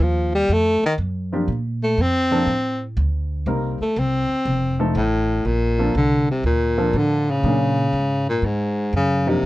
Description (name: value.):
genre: jazz, small-group swing and bop.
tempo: 121 BPM.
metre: 4/4.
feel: swing 68% on 8ths.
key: Bb major.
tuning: A4 = 440 Hz.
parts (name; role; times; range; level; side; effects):
dark baritone saxophone; melody; 0.0-9.5 s; Ab2 to C4; -19 LUFS; left 1 dB; none.
upright bass; bass; 0.0-9.5 s; F1 to Bb2; -23 LUFS; right 1 dB; none.
dark baby grand piano; accompaniment; 1.3-9.4 s; F3 to Bb4; -23 LUFS; equal; none.
room: light reverb.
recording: dark, warm production.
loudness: -18 LUFS.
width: side -17 dB against mid.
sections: 0.0-5.5 A section; 5.5-9.5 B section.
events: baritone saxophone solo 0.0-5.5.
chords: 0.5 F5; 1.5 Bbmaj9; 3.5 Cm7; 4.5 F7; 5.5 Bbmaj9; 7.4 Bb7alt.